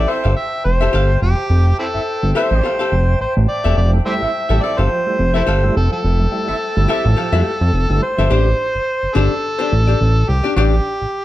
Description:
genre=funk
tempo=106 BPM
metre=4/4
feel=swing 56% on 16ths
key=unclear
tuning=A4 = 440 Hz
part: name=overdriven harmonica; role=melody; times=0.0-11.2 s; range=C4 to E5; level=-20 LUFS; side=equal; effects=none
part: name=archtop guitar, miked and amplified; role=accompaniment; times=0.0-10.7 s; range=D4 to F5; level=-21 LUFS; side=left 6 dB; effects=none
part: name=mellow hollow small flute group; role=sustained chords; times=0.0-8.3 s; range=C5 to A5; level=-30 LUFS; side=equal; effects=none
part: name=fat analog bass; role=bass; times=0.0-11.1 s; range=E1 to F2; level=-15 LUFS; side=equal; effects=none
part: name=warm horn section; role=second line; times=0.1-7.1 s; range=C4 to E5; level=-25 LUFS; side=right 1 dB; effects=none
part: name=percussive tonewheel organ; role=stabs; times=3.8-8.3 s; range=F3 to E4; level=-25 LUFS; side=right 2 dB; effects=overdrive, chorus vibrato, slow rotary speaker
room=light reverb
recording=dark, warm production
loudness=-14 LUFS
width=side -15 dB against mid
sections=0.0-8.3 A section; 8.3-11.2 B section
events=none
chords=0.0 Fmaj9; 8.3 Am11

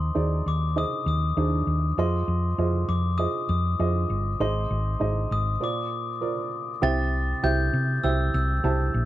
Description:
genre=piano-driven pop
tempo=99 BPM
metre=4/4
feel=straight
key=unclear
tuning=A4 = 440 Hz
part: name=glockenspiel with soft plastic mallets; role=melody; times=0.0-8.9 s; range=C6 to A6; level=-30 LUFS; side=left 4 dB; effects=none
part: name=dark upright piano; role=accompaniment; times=0.0-9.1 s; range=Ab2 to A5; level=-29 LUFS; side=right 4 dB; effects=none
part: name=hollow-body short-scale fingered electric bass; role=bass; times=0.0-9.1 s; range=G1 to C3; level=-24 LUFS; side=equal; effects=none
room=little or no reverb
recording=dry, close 1970s-style studio recording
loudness=-23 LUFS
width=side -14 dB against mid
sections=0.0-6.8 A section; 6.8-9.1 B section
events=break 5.6-6.8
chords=0.0 Ab/Eb; 2.0 Fm7; 4.4 Ab; 5.6 Bbadd9; 6.8 C

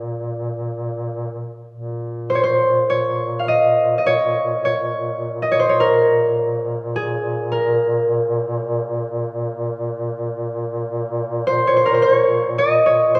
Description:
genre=caucasian folk, Caucasian lament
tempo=52 BPM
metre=4/4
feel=rubato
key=Bb minor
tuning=A4 = 441 Hz
part: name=concert harp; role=melody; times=0.0-13.2 s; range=Ab4 to F5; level=-19 LUFS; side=equal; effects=none
part: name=mellow duduk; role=drone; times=0.0-13.2 s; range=Bb2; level=-27 LUFS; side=equal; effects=none
room=wet recital hall reverb, RT60 1.6 s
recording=recorded in a church or concert hall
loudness=-19 LUFS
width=mono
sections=0.0-1.7 A section; 1.7-13.2 B section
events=none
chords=none

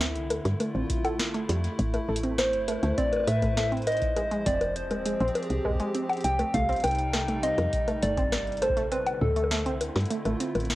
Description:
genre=IDM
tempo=101 BPM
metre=4/4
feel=straight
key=unclear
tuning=A4 = 441 Hz
part: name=hollow soft pad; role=sustained chords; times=0.0-10.8 s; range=C3 to C5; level=-35 LUFS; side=equal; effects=chorus, cassette tape
part: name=warbly dusty pluck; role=arpeggios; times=0.0-10.5 s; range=G3 to A4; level=-32 LUFS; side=right 2 dB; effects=chorus, cassette tape, tape echo
part: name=woody FM bass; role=bass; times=0.0-10.8 s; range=Eb1 to A2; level=-29 LUFS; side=equal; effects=tube saturation
part: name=booming analog drum machine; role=drums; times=0.0-10.8 s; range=bongos, hi-hat, snare drum, toms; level=-32 LUFS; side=left 2 dB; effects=none
part: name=electronic kick drum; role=drums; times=0.9-8.8 s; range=none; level=-33 LUFS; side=equal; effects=none
part: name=soft struck synth lead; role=melody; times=2.4-10.1 s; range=A4 to G5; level=-29 LUFS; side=equal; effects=chorus, cassette tape, tape echo
room=moderate spring reverb, RT60 2.5 s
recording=home recording on cassette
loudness=-24 LUFS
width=side -16 dB against mid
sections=0.0-10.8 A section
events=kick drops out 8.9-10.8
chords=0.0 Dm9; 1.8 Amadd9; 4.2 Fm9; 6.2 Cmadd9; 8.9 Dm9

